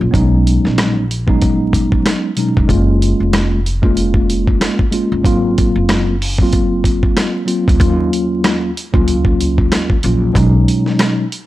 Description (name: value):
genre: hip hop, boom-bap hip-hop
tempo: 94 BPM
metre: 4/4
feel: swing 58% on 16ths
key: Eb minor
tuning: A4 = 440 Hz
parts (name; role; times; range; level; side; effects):
- mellow tine electric piano; accompaniment; 0.0-11.2 s; Eb2 to F4; -16 LUFS; equal; medium stereo tremolo, cassette tape, high-pass filter, low-pass filter
- upright bass; bass; 0.0-10.6 s; F1 to Eb2; -17 LUFS; equal; none
- dusty soul sampler-style drum kit; drums; 0.1-11.5 s; hi-hat, kick drum, rim click, snare drum; -16 LUFS; equal; none
room: little or no reverb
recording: dry, gritty hardware recording, vinyl crackle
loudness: -12 LUFS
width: side -16 dB against mid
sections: 0.0-7.8 A section; 7.8-11.5 B section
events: none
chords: 0.1 B69; 2.7 Gbmaj9; 5.2 Ab13; 7.8 Ebm9; 10.4 B69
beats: | 0.14 0.78 1.42 2.06 | 2.69 3.33 3.97 4.61 | 5.25 5.88 6.52 7.16 | 7.80 8.44 9.08 9.71 | 10.35 10.99